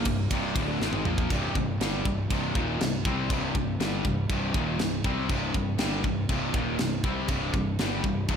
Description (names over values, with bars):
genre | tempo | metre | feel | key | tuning
heavy metal | 120 BPM | 4/4 | straight | C minor | A4 = 440 Hz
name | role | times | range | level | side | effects
distorted electric guitar | riff | 0.0-8.4 s | C2 to C4 | -30 LUFS | left 8 dB | overdrive
distorted electric guitar | riff | 0.0-8.4 s | C2 to C4 | -31 LUFS | right 8 dB | distortion, slapback echo
fuzz picked electric bass | bass | 0.0-8.4 s | C1 to C2 | -33 LUFS | equal | overdrive
tight metal drum kit | drums | 0.1-8.4 s | china cymbal, kick drum, ride cymbal, snare drum, toms | -30 LUFS | equal | none
room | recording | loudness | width
moderate recital hall reverb, RT60 1.3 s, small room reverb | big arena sound | -25 LUFS | side -7 dB against mid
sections
0.0-1.3 A section; 1.3-8.4 B section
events
drum fill 0.8-1.3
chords
0.0 Cm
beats
0.30 0.80 | 1.30 1.80 2.30 2.80 | 3.30 3.80 4.29 4.79 | 5.29 5.79 6.29 6.79 | 7.29 7.79 8.29